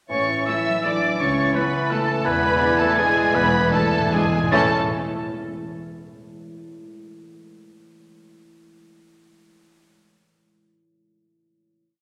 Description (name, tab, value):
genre	classical, orchestral ballroom waltz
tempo	141-180 BPM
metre	3/4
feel	rubato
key	A major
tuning	A4 = 442 Hz
part	warm studio violin section	melody	0.1-4.7 s	G#5 to E6	-29 LUFS	equal	none
part	bright silver concert flute	second line	0.1-4.7 s	G#6 to A6	-27 LUFS	equal	none
part	dark clarinet	second line	0.1-4.7 s	C#5 to E5	-35 LUFS	equal	none
part	mellow cor anglais	second line	0.1-4.7 s	G#4 to E5	-30 LUFS	equal	none
part	rich studio violin section	second line	0.1-4.7 s	G#4 to E5	-32 LUFS	equal	none
part	warm bassoon	accompaniment	0.1-4.7 s	E3	-30 LUFS	equal	none
part	warm French horn section	sustained chords	0.1-4.7 s	G#3 to E4	-30 LUFS	equal	none
part	concert harp	arpeggios	0.1-4.7 s	A2 to E5	-33 LUFS	equal	none
part	rich studio double bass section	bass	0.1-4.7 s	E1 to C#2	-34 LUFS	equal	none
part	warm studio cello section	bass	0.1-4.7 s	C#2 to A2	-36 LUFS	equal	none
part	clear studio viola section	accompaniment	0.5-4.7 s	G#3 to E4	-33 LUFS	equal	none
part	timpani	percussion	2.2-4.7 s	E2 to A2	-32 LUFS	equal	none
room	wet scoring stage reverb, RT60 2.0 s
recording	none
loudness	-20 LUFS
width	mono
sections	0.1-4.5 A section; 4.5-5.7 final chord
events	slowing down 1.7-4.5; timpani fill 2.3-4.5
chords	0.1 A; 1.2 A/C#; 2.3 E7; 4.5 A